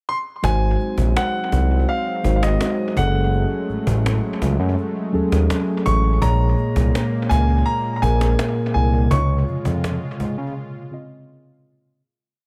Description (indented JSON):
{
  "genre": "contemporary R&B",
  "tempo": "83 BPM",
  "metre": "4/4",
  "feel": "straight",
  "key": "Db major",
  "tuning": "A4 = 440 Hz",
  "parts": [
    { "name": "warm baby grand piano", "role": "melody", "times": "0.1-11.2 s", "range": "Eb5 to Db6", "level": "-28 LUFS", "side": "equal", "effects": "analog delay" },
    { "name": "mellow tine electric piano", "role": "accompaniment", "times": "0.4-12.0 s", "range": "Bb2 to Eb5", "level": "-26 LUFS", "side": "equal", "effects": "none" },
    { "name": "warm analog pad", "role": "sustained chords", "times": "0.4-12.0 s", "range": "Bb2 to F4", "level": "-31 LUFS", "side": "equal", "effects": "chorus" },
    { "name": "smooth synth bass", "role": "bass", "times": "0.4-10.5 s", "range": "Gb1 to Db3", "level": "-22 LUFS", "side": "equal", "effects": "none" },
    { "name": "cajon", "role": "drums", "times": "0.4-10.4 s", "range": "none", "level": "-31 LUFS", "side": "equal", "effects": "analog delay" }
  ],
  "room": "small room ambience",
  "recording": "echo-heavy mix",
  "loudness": "-20 LUFS",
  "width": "mono",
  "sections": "0.0-0.4 pickup bar; 0.4-12.0 chorus",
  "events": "fade-out 9.1-12.0; break 10.6-12.0",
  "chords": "0.4 Ab7; 3.0 Gbmadd9; 6.2 Bbm7; 9.1 Dbmaj7"
}